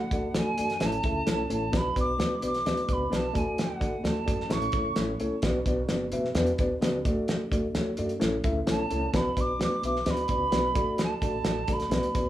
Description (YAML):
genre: uptempo 1960s-style soul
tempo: 130 BPM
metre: 4/4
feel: straight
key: B minor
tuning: A4 = 445 Hz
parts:
  - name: silver concert flute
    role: melody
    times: 0.0-5.0, 8.7-12.3 s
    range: F#5 to D6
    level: -31 LUFS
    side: right 2 dB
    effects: plate reverb, tape echo
  - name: mellow reed electric piano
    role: accompaniment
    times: 0.0-12.3 s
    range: A3 to E5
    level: -29 LUFS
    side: left 1 dB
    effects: fast tremolo, plate reverb
  - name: upright bass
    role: bass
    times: 0.0-12.3 s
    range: F#1 to B2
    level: -34 LUFS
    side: right 1 dB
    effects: tube saturation
  - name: cloth-damped thuddy drum kit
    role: drums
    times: 0.1-12.3 s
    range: hi-hat, kick drum, snare drum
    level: -30 LUFS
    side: equal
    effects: none
room: moderate studio reverb, RT60 0.5 s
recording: studio ambience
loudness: -25 LUFS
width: side -13 dB against mid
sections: 0.0-12.3 A section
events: none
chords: 0.0 D; 0.8 A; 1.7 Bm; 3.4 D; 4.5 A; 5.4 Bm; 7.1 D; 8.2 A; 9.1 Bm; 10.8 D